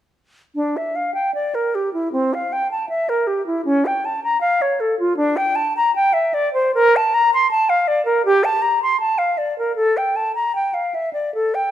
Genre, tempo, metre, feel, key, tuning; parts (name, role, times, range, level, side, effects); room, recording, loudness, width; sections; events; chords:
classical, baroque-style fantasia for unaccompanied flute; 78 BPM; 4/4; rubato; D minor; A4 = 442 Hz
concert flute; solo; 0.6-11.7 s; C4 to C6; -17 LUFS; equal
wet stone room reverb, RT60 1.4 s; dark, warm production; -17 LUFS; side -11 dB against mid
0.6-11.7 A section